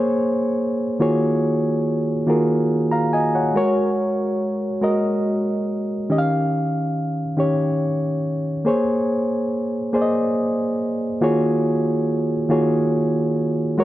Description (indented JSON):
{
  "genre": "R&B",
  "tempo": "47 BPM (dotted quarters)",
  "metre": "6/8",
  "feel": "straight",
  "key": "unclear",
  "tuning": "A4 = 440 Hz",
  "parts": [
    { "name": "reed electric piano", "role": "solo", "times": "0.0-13.8 s", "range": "Eb3 to Bb5", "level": "-18 LUFS", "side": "equal", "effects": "none" }
  ],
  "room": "moderate plate reverb, RT60 3.4 s",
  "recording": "dark, warm production",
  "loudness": "-18 LUFS",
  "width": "side -15 dB against mid",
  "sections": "0.0-1.0 A section; 1.0-13.8 B section",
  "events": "none",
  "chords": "0.0 Bbm9; 1.0 Ebm11; 3.6 Ab9sus4; 6.1 Eb9; 8.7 Bbm9; 11.2 Ebm11",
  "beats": "| 1.01 2.29 | 3.57 4.84 | 6.12 7.39 | 8.67 9.95 | 11.22 12.50 | 13.78"
}